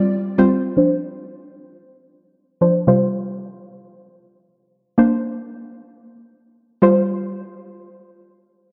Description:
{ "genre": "pop", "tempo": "114 BPM", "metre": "4/4", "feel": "straight", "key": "unclear", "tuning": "A4 = 440 Hz", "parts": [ { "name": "soft round pluck", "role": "solo", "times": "0.0-8.7 s", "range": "C3 to D5", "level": "-18 LUFS", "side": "equal", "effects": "chorus, low-pass filter" } ], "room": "moderate plate reverb, RT60 2.5 s", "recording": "dark, warm production", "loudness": "-18 LUFS", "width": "mono", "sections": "0.8-8.7 A section", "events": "filter sweep on synth pluck 0.8-8.7", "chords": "0.0 Fsus2; 0.8 Dm7; 2.9 Fsus2/C; 5.0 Bbadd9; 6.8 Fsus2" }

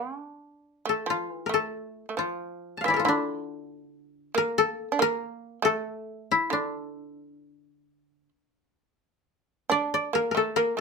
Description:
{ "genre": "japanese traditional, Japanese chamber music", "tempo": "64-72 BPM", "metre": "2/4", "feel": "rubato", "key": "D hirajoshi", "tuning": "A4 = 439 Hz", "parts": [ { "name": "koto", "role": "melody", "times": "0.0-10.8 s", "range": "D4 to A5", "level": "-26 LUFS", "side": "left 4 dB", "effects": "none" }, { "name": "shamisen", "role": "second line", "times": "0.0-10.8 s", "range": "D3 to D4", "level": "-30 LUFS", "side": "right 4 dB", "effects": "none" } ], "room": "moderate small room reverb, RT60 0.6 s", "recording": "minimal, uncompressed stereo recording", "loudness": "-25 LUFS", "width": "side -4 dB against mid", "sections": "0.0-1.7 A section; 1.7-10.8 B section", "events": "none", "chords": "none" }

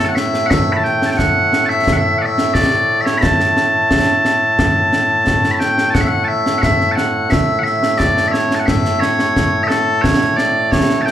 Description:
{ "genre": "scottish traditional, Scottish pipe music", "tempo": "88 BPM", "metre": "4/4", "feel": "straight", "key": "A major", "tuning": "A4 = 440 Hz", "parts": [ { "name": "loud bright bagpipes", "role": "melody", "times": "0.0-11.1 s", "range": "A2 to B5", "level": "-14 LUFS", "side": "equal", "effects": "slapback echo" }, { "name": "concert snare drum and concert bass drum", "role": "drums", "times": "0.2-11.1 s", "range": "none", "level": "-18 LUFS", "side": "equal", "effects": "slapback echo" } ], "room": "moderate club reverb, RT60 0.5 s", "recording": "live gig heard through the venue's PA, club ambience", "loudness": "-12 LUFS", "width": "side -11 dB against mid", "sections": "0.0-6.0 A section; 6.0-11.1 B section", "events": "none", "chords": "none" }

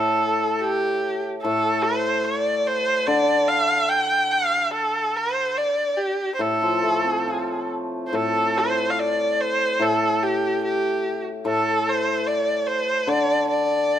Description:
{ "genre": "chinese traditional, Chinese chamber ensemble", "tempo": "73 BPM", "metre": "4/4", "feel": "rubato", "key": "unclear", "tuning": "A4 = 440 Hz", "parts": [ { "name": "rich erhu", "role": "melody", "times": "0.0-14.0 s", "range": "G4 to G5", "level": "-21 LUFS", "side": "equal", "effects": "none" }, { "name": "hammered dulcimer", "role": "accompaniment", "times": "0.0-14.0 s", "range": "A2 to F4", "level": "-26 LUFS", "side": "left 2 dB", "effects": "none" } ], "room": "light reverb", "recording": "close, detailed microphones", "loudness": "-20 LUFS", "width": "side -10 dB against mid", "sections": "0.0-14.0 A section", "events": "none", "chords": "none" }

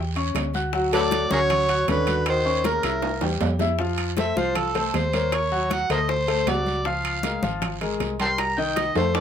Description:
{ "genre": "Afro-Cuban jazz", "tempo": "157 BPM", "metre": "4/4", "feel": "straight", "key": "unclear", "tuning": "A4 = 440 Hz", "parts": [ { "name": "clear concert grand piano", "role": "accompaniment", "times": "0.0-9.2 s", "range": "Eb3 to Gb6", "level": "-26 LUFS", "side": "left 4 dB", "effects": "none" }, { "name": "hollow-body short-scale fingered electric bass", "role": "bass", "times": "0.0-9.2 s", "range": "Ab1 to F2", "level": "-28 LUFS", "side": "equal", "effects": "none" }, { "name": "bongos", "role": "percussion", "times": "0.2-9.2 s", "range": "none", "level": "-34 LUFS", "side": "left 6 dB", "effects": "none" }, { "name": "congas", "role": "percussion", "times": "0.2-9.2 s", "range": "none", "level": "-32 LUFS", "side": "left 1 dB", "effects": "none" }, { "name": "timbales", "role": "percussion", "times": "0.2-9.2 s", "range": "none", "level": "-31 LUFS", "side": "right 6 dB", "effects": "none" }, { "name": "guiro", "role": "percussion", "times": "0.3-9.2 s", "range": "none", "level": "-37 LUFS", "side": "right 7 dB", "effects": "none" }, { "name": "overdriven harmonica", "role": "melody", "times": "0.9-9.2 s", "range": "Ab4 to C6", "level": "-24 LUFS", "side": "right 1 dB", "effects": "none" }, { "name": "clear tenor saxophone", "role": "second line", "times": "0.9-3.0 s", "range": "Db3 to F#3", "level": "-28 LUFS", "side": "right 5 dB", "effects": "none" } ], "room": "light reverb", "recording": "minimal, uncompressed stereo recording", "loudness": "-21 LUFS", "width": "side -8 dB against mid", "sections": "0.0-3.8 A section; 3.8-9.2 B section", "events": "drum fill 3.0-3.8, 9.0; harmonica solo 3.8-9.2", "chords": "0.0 A7 (rootless); 0.7 Dmaj7; 2.3 Ebm7; 3.0 C; 3.8 F; 5.3 Ebm7; 6.1 D7; 6.9 Db6; 8.4 Cm7" }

